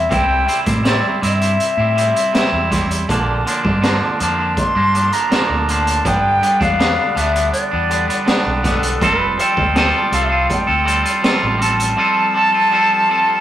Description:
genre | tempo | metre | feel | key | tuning
psychedelic rock | 81 BPM | 4/4 | straight | unclear | A4 = 441 Hz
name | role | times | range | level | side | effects
silver concert flute | melody | 0.0-13.4 s | A4 to C6 | -17 LUFS | left 1 dB | none
twangy electric guitar | riff | 0.0-13.4 s | G2 to A4 | -18 LUFS | right 2 dB | none
fingered electric bass | bass | 0.0-11.9 s | F1 to A2 | -21 LUFS | equal | none
raw garage drum kit | drums | 0.1-12.0 s | hi-hat, kick drum, snare drum | -21 LUFS | equal | none
room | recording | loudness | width
moderate small room reverb, RT60 0.5 s | rough rehearsal-room recording | -13 LUFS | side -12 dB against mid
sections
0.0-13.4 A section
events
none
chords
0.0 C; 3.1 Bb; 6.0 G; 9.0 Fadd9

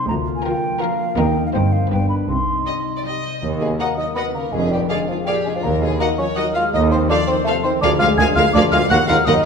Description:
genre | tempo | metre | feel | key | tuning
cinematic, playful, whimsical film cue | 164 BPM | 3/4 | straight | C minor, Eb minor from 3.4 s | A4 = 440 Hz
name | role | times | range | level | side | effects
mellow hollow silver concert flute | second line | 0.0-9.4 s | F5 to Ab6 | -24 LUFS | equal | none
dark French horn section | sustained chords | 0.0-9.4 s | Ab2 to F4 | -26 LUFS | left 3 dB | none
concert harp | arpeggios | 0.0-9.5 s | G2 to D5 | -26 LUFS | left 6 dB | none
rich studio double bass section | bass | 0.1-9.3 s | F1 to Eb2 | -25 LUFS | right 3 dB | none
warm studio cello section | bass | 0.1-9.3 s | D2 to C3 | -24 LUFS | right 2 dB | none
rich studio violin section | melody | 0.5-9.3 s | Bb4 to Gb5 | -26 LUFS | left 5 dB | none
rich studio violin section | second line | 0.5-9.3 s | F4 to Ab5 | -28 LUFS | left 2 dB | none
rich studio viola section | accompaniment | 0.5-9.4 s | D4 to Eb5 | -27 LUFS | right 3 dB | none
clear tuba | bass | 3.4-9.4 s | F1 to Eb2 | -26 LUFS | right 4 dB | none
mellow bassoon | accompaniment | 3.6-9.4 s | F3 to Ab4 | -21 LUFS | right 1 dB | none
room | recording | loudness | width
wet scoring stage reverb, RT60 1.5 s | minimal, uncompressed stereo recording | -16 LUFS | side -6 dB against mid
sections
0.0-3.4 A section; 3.4-9.5 B section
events
none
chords
0.1 Bb/D; 1.2 Eb; 1.6 Cm/G; 1.9 G; 2.3 Cm; 3.4 Ebm; 4.5 Ddim/F; 5.6 Ebm; 6.7 F7/Eb; 7.8 Bb7/D; 8.9 Ebm

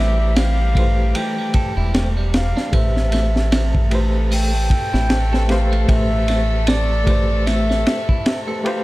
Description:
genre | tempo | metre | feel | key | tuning
trip hop | 76 BPM | 4/4 | swing 58% on 16ths | A minor | A4 = 440 Hz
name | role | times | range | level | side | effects
reedy baroque flute | melody | 0.0-8.8 s | D5 to G5 | -25 LUFS | equal | tape echo
reed electric piano | accompaniment | 0.0-8.8 s | E3 to C5 | -27 LUFS | equal | tremolo
dark chamber string section | sustained chords | 0.0-8.8 s | G3 to A4 | -30 LUFS | left 2 dB | vintage 12-bit sampler grit
clean electric guitar | arpeggios | 0.0-8.6 s | G3 to A4 | -28 LUFS | right 2 dB | tape echo
deep dub fingered electric bass | bass | 0.0-7.8 s | E1 to A1 | -18 LUFS | equal | tube saturation
crunchy breakbeat drum kit | drums | 0.4-8.8 s | hi-hat, kick drum, ride cymbal, snare drum | -21 LUFS | equal | none
room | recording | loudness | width
little or no reverb | none | -15 LUFS | side -19 dB against mid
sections
0.0-8.8 A section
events
none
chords
0.0 Fmaj9#11; 2.7 Am9

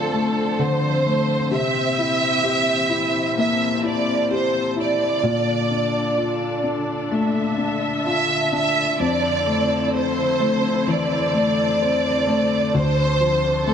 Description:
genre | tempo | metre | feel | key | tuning
pop | 64 BPM | 4/4 | straight | F major | A4 = 440 Hz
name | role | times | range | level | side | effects
warm studio violin section | melody | 0.0-13.7 s | A4 to E5 | -21 LUFS | right 2 dB | none
warm grand piano | accompaniment | 0.0-13.7 s | D2 to G4 | -22 LUFS | left 3 dB | none
muted studio string section | sustained chords | 0.0-13.7 s | Bb2 to E5 | -28 LUFS | right 1 dB | none
room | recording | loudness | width
wet recital hall reverb, RT60 1.4 s, small room ambience | dark, warm production, nothing above 10.4 kHz | -18 LUFS | side -8 dB against mid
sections
0.0-13.7 A section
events
none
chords
0.0 Dm7; 1.5 C7; 5.2 Bbmaj7; 9.0 Fmaj7; 12.7 Dm7

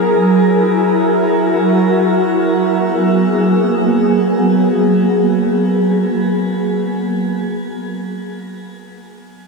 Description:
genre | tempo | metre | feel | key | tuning
hip hop | free time | none | none | G# minor | A4 = 440 Hz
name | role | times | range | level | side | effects
glassy FM pad | sustained chords | 0.0-7.1 s | F#3 to A#4 | -13 LUFS | right 1 dB | ensemble chorus, built-in reverb, low-pass filter
room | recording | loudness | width
moderate shimmer reverb, RT60 4.4 s | dense, heavily limited modern master | -12 LUFS | side -3 dB against mid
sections
0.0-2.7 A section; 2.7-6.3 B section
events
none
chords
0.0 F#9; 2.7 G#m9

